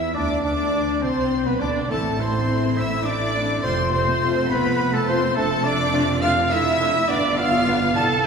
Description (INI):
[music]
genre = quick classical-period movement for symphony orchestra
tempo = 69 BPM (dotted quarters)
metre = 6/8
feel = straight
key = unclear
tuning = A4 = 438 Hz
[part]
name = rich chamber violin section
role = melody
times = 0.0-8.0 s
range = A5 to A6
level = -30 LUFS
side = left 3 dB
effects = none
[part]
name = concert flute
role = second line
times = 0.0-8.3 s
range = A4 to A5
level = -30 LUFS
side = equal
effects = none
[part]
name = warm clarinet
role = second line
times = 0.0-8.1 s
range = D4 to E5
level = -30 LUFS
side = left 2 dB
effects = none
[part]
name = warm oboe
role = second line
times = 0.0-8.1 s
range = A4 to A5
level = -30 LUFS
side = right 1 dB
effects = none
[part]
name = warm symphonic violin section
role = second line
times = 0.0-8.3 s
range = A4 to A5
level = -30 LUFS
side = left 1 dB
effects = none
[part]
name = clear studio viola section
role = accompaniment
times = 0.0-8.3 s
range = A3 to A4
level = -31 LUFS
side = right 1 dB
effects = none
[part]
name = warm bassoon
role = accompaniment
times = 0.0-8.1 s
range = G3 to E4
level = -32 LUFS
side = right 1 dB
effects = none
[part]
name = mellow French horn section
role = sustained chords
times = 0.0-7.8 s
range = A3 to F4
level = -31 LUFS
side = left 3 dB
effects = none
[part]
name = mellow trumpet section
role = stabs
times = 0.0-8.2 s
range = A4 to A5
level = -26 LUFS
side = equal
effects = none
[part]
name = clear studio double bass section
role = bass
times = 0.0-8.3 s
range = F1 to E2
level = -26 LUFS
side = right 3 dB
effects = none
[part]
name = rich chamber cello section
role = bass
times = 0.0-8.2 s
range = A3 to A4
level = -27 LUFS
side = equal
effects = none
[sound]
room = wet concert hall reverb, RT60 2.3 s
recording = heard from further back in the room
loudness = -18 LUFS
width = side -6 dB against mid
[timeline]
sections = 0.0-8.3 A section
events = none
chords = 0.2 Csus2; 1.9 Am; 3.6 F; 5.4 Dm/F; 7.1 G7